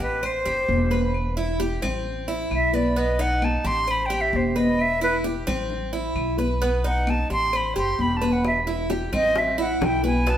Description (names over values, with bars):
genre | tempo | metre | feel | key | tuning
latin, Cuban son and guajira | 131 BPM | 4/4 | straight | E harmonic minor | A4 = 439 Hz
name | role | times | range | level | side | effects
silver concert flute | melody | 0.0-10.4 s | B4 to C6 | -24 LUFS | equal | none
Cuban tres | arpeggios | 0.0-10.4 s | B3 to C5 | -27 LUFS | right 2 dB | none
upright bass | bass | 0.0-10.4 s | E1 to B1 | -27 LUFS | equal | none
congas | percussion | 0.0-10.4 s | none | -28 LUFS | left 1 dB | none
claves | percussion | 0.2-10.0 s | none | -38 LUFS | left 5 dB | none
bongos | percussion | 8.4-10.4 s | none | -31 LUFS | left 3 dB | none
room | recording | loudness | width
wet stone room reverb, RT60 1.4 s | band playing live in one room | -21 LUFS | side -10 dB against mid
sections
0.0-10.4 A section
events
flute solo 0.0-10.4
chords
0.2 Am7; 1.1 Em; 2.1 Am; 3.0 B7; 3.9 Em; 5.7 Am; 6.6 B7; 7.5 Am7; 8.4 Em; 9.4 Am